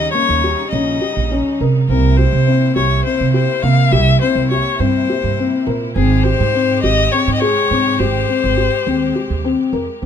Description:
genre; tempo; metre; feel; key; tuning
contemporary instrumental, chamber music in an uneven meter; 207 BPM (eighths); 7/8; straight; unclear; A4 = 440 Hz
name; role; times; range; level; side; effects
rich violin; melody; 0.0-9.4 s; Ab4 to F5; -18 LUFS; left 6 dB; none
bright studio string section; sustained chords; 0.0-10.0 s; C3 to G4; -26 LUFS; equal; none
felt-muted upright piano; arpeggios; 0.0-10.1 s; Bb3 to Bb4; -19 LUFS; left 4 dB; none
upright bass; bass; 0.0-10.1 s; Ab1 to C3; -16 LUFS; right 4 dB; none
room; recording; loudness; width
light reverb; close, detailed microphones; -13 LUFS; side -8 dB against mid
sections
0.0-10.0 A section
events
none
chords
0.0 Eb7; 1.9 C7; 6.0 Abmaj7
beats
0.15 0.44 0.73 1.02 1.31 1.60 | 1.90 2.19 2.48 2.77 3.06 3.35 3.64 | 3.93 4.22 4.51 4.80 5.09 5.38 5.67 | 5.96 6.25 6.54 6.83 7.12 7.41 7.71 | 8.00 8.29 8.57 8.87 9.15 9.45 9.73 | 10.03

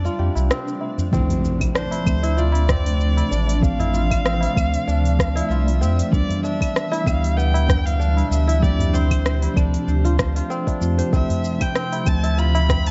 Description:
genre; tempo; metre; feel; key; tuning
organic downtempo; 96 BPM; 4/4; swing 54% on 16ths; D dorian; A4 = 435 Hz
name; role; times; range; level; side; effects
granular cloud pad; sustained chords; 0.0-12.9 s; B2 to D5; -32 LUFS; equal; built-in reverb, sidechain pumping, shimmer reverb
kora; arpeggios; 0.0-12.9 s; B3 to C5; -31 LUFS; equal; delay, shimmer reverb
warm sub bass; bass; 0.0-12.9 s; A1 to F2; -22 LUFS; equal; sidechain pumping
afro-pop drum kit; drums; 0.1-12.9 s; claves, hi-hat, rim click, shaker; -29 LUFS; equal; none
tabla; percussion; 0.2-12.8 s; none; -31 LUFS; equal; none
muted felt-like synth keys; accompaniment; 1.1-12.9 s; E3 to F5; -29 LUFS; equal; chorus, sidechain pumping
electronic kick drum; drums; 1.1-12.8 s; none; -23 LUFS; equal; none
impact; sound effects; 1.1-3.6 s; none; -29 LUFS; equal; none
clear kamancheh; melody; 1.8-12.9 s; C5 to B5; -31 LUFS; equal; vintage 12-bit sampler grit, digital delay, shimmer reverb
room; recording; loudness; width
light reverb; dark, warm production, nothing above 7.7 kHz; -20 LUFS; mono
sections
0.0-1.1 A section; 1.1-12.9 B section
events
impact 1.1-3.6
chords
0.0 G9sus4; 1.1 Dm9; 6.1 Em7/D; 8.6 G9sus4/D; 11.1 Dm9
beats
0.51 | 1.13 1.76 2.38 3.01 | 3.63 4.26 4.88 5.51 | 6.13 6.76 7.38 8.01 | 8.63 9.26 9.88 10.51 | 11.13 11.76 12.38

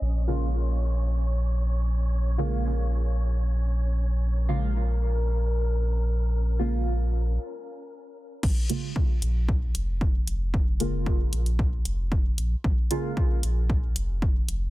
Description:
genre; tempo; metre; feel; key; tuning
dub techno; 114 BPM; 4/4; straight; Bb minor; A4 = 440 Hz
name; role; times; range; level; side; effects
warm sub bass; bass; 0.0-14.7 s; F1 to Bb1; -25 LUFS; equal; sidechain pumping
wind-like tuned noise texture; texture; 0.0-7.4 s; Db4 to Db5; -38 LUFS; left 3 dB; built-in reverb, sidechain pumping
deep mellow chord stab; stabs; 0.3-13.1 s; Db3 to F4; -32 LUFS; right 2 dB; chorus, phaser, sidechain pumping, dub echo
electronic kick drum; drums; 8.4-14.3 s; none; -25 LUFS; equal; small room ambience
punchy analog drum machine; drums; 8.4-14.6 s; crash cymbal, hi-hat; -34 LUFS; left 1 dB; low-pass filter on cymbals, small room ambience, low-pass filter on hats
room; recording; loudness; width
little or no reverb; dense, heavily limited modern master, low-pass filter; -23 LUFS; side -17 dB against mid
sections
0.0-8.4 A section; 8.4-14.7 B section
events
filter sweep 0.0-8.4; break 7.4-8.4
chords
0.0 Bbm7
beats
| 0.01 0.54 1.06 1.59 | 2.12 2.64 3.17 3.70 | 4.22 4.75 5.28 5.80 | 6.33 6.85 7.38 7.91 | 8.43 8.96 9.48 10.01 | 10.54 11.06 11.59 12.12 | 12.64 13.17 13.70 14.22

